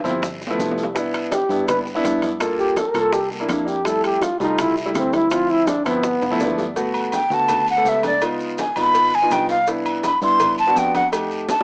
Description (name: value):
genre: Afro-Cuban jazz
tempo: 165 BPM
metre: 4/4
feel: straight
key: C major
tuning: A4 = 441 Hz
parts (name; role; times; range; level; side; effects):
- warm concert grand piano; accompaniment; 0.0-11.5 s; F3 to D5; -26 LUFS; equal; cassette tape
- fingered electric bass; bass; 0.0-11.6 s; F1 to G2; -36 LUFS; equal; none
- guiro; percussion; 0.0-11.6 s; none; -41 LUFS; equal; none
- congas; percussion; 0.1-11.6 s; none; -35 LUFS; equal; none
- maracas; percussion; 0.1-11.6 s; none; -43 LUFS; equal; none
- timbales and agogo bells; percussion; 0.1-11.6 s; none; -32 LUFS; equal; none
- bongos and cowbell; percussion; 0.2-11.6 s; none; -31 LUFS; equal; none
- breathy trombone; second line; 1.3-6.6 s; G3 to B4; -23 LUFS; equal; cassette tape
- breathy mellow silver concert flute; melody; 7.1-11.6 s; D5 to C6; -20 LUFS; equal; cassette tape
room: moderate spring reverb, RT60 1.6 s, small room ambience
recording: home recording on cassette, small speaker sound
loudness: -20 LUFS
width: mono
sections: 0.0-6.8 A section; 6.8-11.6 A section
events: drum fill 0.0-1.0, 6.2-6.8; trombone solo 0.0-6.8; grand piano fill 6.2-6.8; flute solo 6.8-11.6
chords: 0.2 G13; 1.0 Cmaj9; 2.4 Gm9; 3.1 C9; 3.9 Fmaj7; 5.3 Dm7; 6.0 G13; 6.8 Gmaj9; 8.2 C#9; 9.7 Cmaj7; 11.1 F9